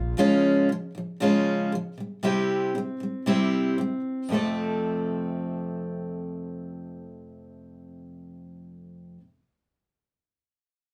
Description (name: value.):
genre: pop.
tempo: 116 BPM.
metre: 4/4.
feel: swing 55% on 16ths.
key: F major.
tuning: A4 = 440 Hz.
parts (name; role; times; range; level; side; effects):
picked steel-string acoustic guitar; accompaniment; 0.0-9.2 s; F2 to A4; -27 LUFS; equal; none.
room: wet small room reverb, RT60 0.5 s.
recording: band playing live in one room.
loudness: -26 LUFS.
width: mono.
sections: 0.0-4.3 A section; 4.3-8.4 B section.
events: none.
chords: 0.2 Db; 2.0 C; 4.3 F.